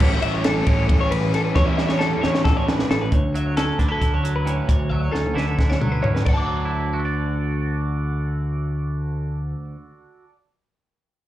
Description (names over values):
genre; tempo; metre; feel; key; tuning
math rock and midwest emo; 267 BPM (eighths); 7/8; straight; D major; A4 = 438 Hz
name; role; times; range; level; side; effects
twelve-string electric guitar; arpeggios; 0.0-9.6 s; A4 to D6; -26 LUFS; left 2 dB; slapback echo
crunchy overdriven guitar; riff; 0.0-3.1 s; A2 to E4; -24 LUFS; equal; slapback echo
growling fingered electric bass; bass; 0.0-9.5 s; A1 to A2; -24 LUFS; equal; overdrive
compact cocktail drum kit; drums; 0.0-6.4 s; crash cymbal, hi-hat, kick drum, ride cymbal, snare drum, toms; -21 LUFS; equal; none
twangy electric guitar; accompaniment; 3.1-10.4 s; D2 to D5; -27 LUFS; right 4 dB; lush chorus
room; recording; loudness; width
little or no reverb; live gig heard through the venue's PA, club reverb; -19 LUFS; side -14 dB against mid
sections
0.0-3.1 A section; 3.1-6.3 B section; 6.3-9.4 C section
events
drum fill 1.6-3.1, 4.9-6.3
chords
0.0 A9; 3.1 Dmaj9; 6.3 Dadd9